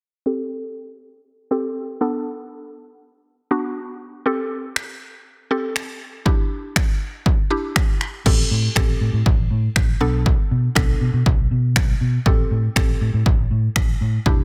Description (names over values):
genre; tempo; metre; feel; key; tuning
dance-pop; 120 BPM; 4/4; straight; A dorian; A4 = 440 Hz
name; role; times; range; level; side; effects
mallet-like synth pluck; accompaniment; 0.3-14.4 s; B3 to A4; -27 LUFS; equal; chorus, sidechain pumping, low-pass filter
punchy analog drum machine; drums; 4.8-14.4 s; crash cymbal, finger snaps, kick drum; -21 LUFS; equal; soft clipping on snare
vintage muted fingered electric bass; bass; 8.3-14.4 s; E1 to B2; -22 LUFS; equal; sidechain pumping
room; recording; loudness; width
digital ambience; dense, heavily limited modern master; -20 LUFS; mono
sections
0.3-8.3 A section; 8.3-14.4 B section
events
filter sweep on synth pluck 0.3-8.3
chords
0.3 Am7; 2.0 Bm7; 4.3 Am7; 6.3 Em7; 8.3 Am7; 10.0 Bm7; 12.3 Am7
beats
| 0.26 0.76 1.26 1.76 | 2.26 2.76 3.26 3.76 | 4.26 4.76 5.26 5.76 | 6.26 6.76 7.26 7.76 | 8.26 8.76 9.26 9.76 | 10.26 10.76 11.26 11.76 | 12.26 12.76 13.26 13.76 | 14.26